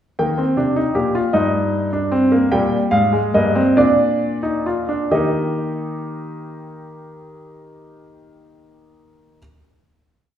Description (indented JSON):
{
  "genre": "classical, baroque-style 3-part fugue for grand piano",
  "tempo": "43-53 BPM (dotted quarters)",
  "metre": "6/8",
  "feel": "straight",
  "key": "Eb major",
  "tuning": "A4 = 440 Hz",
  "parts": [
    { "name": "clear grand piano", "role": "solo", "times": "0.2-9.4 s", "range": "G2 to G5", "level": "-16 LUFS", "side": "equal", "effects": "none" }
  ],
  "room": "wet recital hall reverb, RT60 1.3 s",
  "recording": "heard from further back in the room",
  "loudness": "-16 LUFS",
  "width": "side -10 dB against mid",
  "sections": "0.2-5.1 exposition; 5.1-7.9 final chord",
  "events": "slowing down 0.2-6.5",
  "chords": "0.2 Eb; 1.3 Eb/G; 2.5 Eb; 3.8 Bb; 5.1 Eb"
}